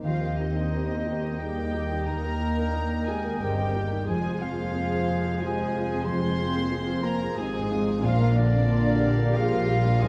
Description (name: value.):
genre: cinematic.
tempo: 90 BPM.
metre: 3/4.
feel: rubato.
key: unclear.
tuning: A4 = 440 Hz.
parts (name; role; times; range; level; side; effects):
warm symphonic violin section; melody; 0.0-10.1 s; D5 to C6; -40 LUFS; equal; none.
clear oboe; second line; 0.0-10.1 s; F5 to Ab5; -42 LUFS; equal; none.
silver concert flute; second line; 0.0-10.1 s; D5 to C6; -39 LUFS; equal; none.
warm clarinet; second line; 0.0-10.1 s; Bb4 to Eb5; -41 LUFS; equal; none.
dark grand piano; accompaniment; 0.0-10.1 s; Bb1 to Eb5; -35 LUFS; equal; none.
dark symphonic viola section; accompaniment; 0.0-10.1 s; F3 to Bb4; -35 LUFS; equal; none.
dark French horn section; sustained chords; 0.0-10.1 s; D3 to C4; -35 LUFS; equal; none.
concert harp; arpeggios; 0.0-10.1 s; Bb2 to Bb5; -36 LUFS; equal; none.
dark studio double bass section; bass; 0.0-10.1 s; F1 to Eb2; -33 LUFS; equal; none.
warm symphonic cello section; bass; 0.0-10.1 s; Eb2 to Bb2; -34 LUFS; equal; none.
warm symphonic violin section; second line; 0.1-10.1 s; D4 to C5; -38 LUFS; equal; none.
room: wet scoring stage reverb, RT60 1.8 s.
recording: dark, warm production, vinyl crackle.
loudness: -26 LUFS.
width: mono.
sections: 0.0-10.1 A section.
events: none.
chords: 0.0 Eb; 4.1 Fm; 8.0 Bb.